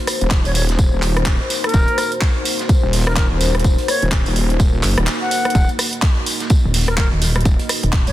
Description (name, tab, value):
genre	bass house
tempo	126 BPM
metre	4/4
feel	swing 59% on 16ths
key	Eb dorian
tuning	A4 = 440 Hz
part	dark analog pad	sustained chords	0.0-8.1 s	Bb3 to Eb5	-25 LUFS	left 3 dB	chorus, phaser, sidechain pumping
part	house drum kit	drums	0.1-8.1 s	handclaps, hi-hat, rim click	-22 LUFS	right 1 dB	soft clipping on snare
part	raw garage drum kit	drums	0.1-8.1 s	hi-hat, snare drum, tambourine	-30 LUFS	equal	sidechain pumping on hats, high-pass filter on hats, high-pass filter on snare, sidechain pumping on perc, high-pass filter on perc, high-pass filter on room
part	wobble bass	bass	0.2-7.6 s	Eb1 to Gb1	-19 LUFS	equal	chorus, overdrive, sidechain pumping
part	electronic kick drum	drums	0.3-8.0 s	none	-16 LUFS	equal	none
part	breathy reedy concert flute	melody	0.5-8.1 s	Bb4 to Gb5	-24 LUFS	left 1 dB	tape echo
part	pulsing pluck wobble bass	bass	6.6-8.1 s	Eb1	-18 LUFS	equal	chorus, overdrive, sidechain pumping
room	small room ambience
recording	dense, heavily limited modern master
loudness	-14 LUFS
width	side -14 dB against mid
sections	0.0-8.1 A section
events	break 5.1-5.5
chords	0.0 Ebm